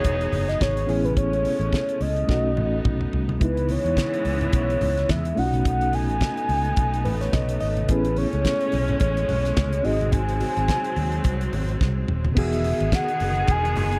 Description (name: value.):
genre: disco.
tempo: 107 BPM.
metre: 4/4.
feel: swing 56% on 16ths.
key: E major.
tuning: A4 = 440 Hz.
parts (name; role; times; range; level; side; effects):
mellow horn-like synth lead; melody; 0.0-14.0 s; B4 to G#5; -29 LUFS; equal; chorus.
reed electric piano; accompaniment; 0.0-14.0 s; D#3 to D#5; -31 LUFS; equal; harmonic tremolo.
clear studio string section; sustained chords; 0.0-14.0 s; C#3 to G#4; -33 LUFS; equal; none.
damped 70s drum kit; drums; 0.0-14.0 s; crash cymbal, hi-hat, kick drum, snare drum, toms; -27 LUFS; equal; none.
congas; percussion; 0.0-13.9 s; none; -36 LUFS; equal; none.
fingered electric bass; bass; 0.1-14.0 s; D#1 to E2; -28 LUFS; equal; none.
room: small room reverb.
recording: dry, close 1970s-style studio recording.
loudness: -23 LUFS.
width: mono.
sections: 0.0-3.4 A section; 3.4-12.4 B section; 12.4-14.0 C section.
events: drum fill 2.3-3.4, 11.8-12.4; reed electric piano fill 6.8-7.9.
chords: 0.0 Emaj7; 0.9 Amaj7; 2.3 B9; 3.4 C#m7; 5.4 B7; 7.9 Amaj7; 9.8 G#7; 12.4 Emaj7.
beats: 0.04 0.60 | 1.16 1.73 2.29 2.85 | 3.41 3.97 4.53 5.09 | 5.65 6.21 6.77 7.33 | 7.89 8.45 9.01 9.57 | 10.13 10.69 11.24 11.80 | 12.36 12.92 13.48.